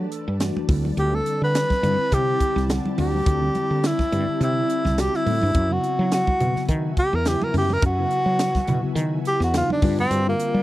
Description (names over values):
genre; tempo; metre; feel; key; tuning
electric jazz fusion; 105 BPM; 4/4; swing 55% on 16ths; unclear; A4 = 440 Hz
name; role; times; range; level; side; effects
mellow tine electric piano; accompaniment; 0.0-10.6 s; C#3 to F#5; -29 LUFS; left 1 dB; medium stereo tremolo, phaser
ethereal airy pad; sustained chords; 0.0-10.6 s; C4 to A5; -33 LUFS; left 1 dB; ensemble chorus, built-in reverb
woody fretless electric bass; bass; 0.0-10.6 s; C2 to G3; -23 LUFS; equal; none
crisp fusion drum kit; drums; 0.1-10.5 s; hi-hat, kick drum, snare drum; -24 LUFS; equal; none
congas; percussion; 0.6-10.1 s; none; -30 LUFS; right 2 dB; none
breathy tenor saxophone; melody; 1.0-10.6 s; Bb3 to B4; -23 LUFS; equal; none
room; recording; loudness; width
little or no reverb; dry, close 1970s-style studio recording; -19 LUFS; side -16 dB against mid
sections
0.0-10.6 A section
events
tenor saxophone solo 0.0-10.6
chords
0.0 A9sus4; 0.7 D9sus4; 5.5 F#9sus4; 9.8 G9sus4